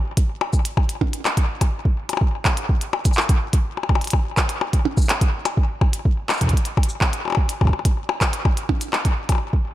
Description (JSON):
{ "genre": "IDM", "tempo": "125 BPM", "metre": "4/4", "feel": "straight", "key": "none", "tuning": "none", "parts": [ { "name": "electronic kick drum", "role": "drums", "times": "0.2-9.6 s", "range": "none", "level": "-19 LUFS", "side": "equal", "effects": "overdrive, studio reverb" }, { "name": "glitchy drum kit", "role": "drums", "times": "0.2-9.4 s", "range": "handclaps, hi-hat, percussion blips, shaker", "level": "-23 LUFS", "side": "left 2 dB", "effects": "overdrive, studio reverb, tape echo" } ], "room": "light reverb, digital ambience", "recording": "echo-heavy mix", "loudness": "-18 LUFS", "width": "side -14 dB against mid", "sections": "0.0-9.7 A section", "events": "none", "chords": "none", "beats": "0.29 | 0.77 1.25 1.73 2.21 | 2.69 3.17 3.65 4.13 | 4.61 5.09 5.57 6.05 | 6.53 7.01 7.49 7.97 | 8.45 8.93 9.41" }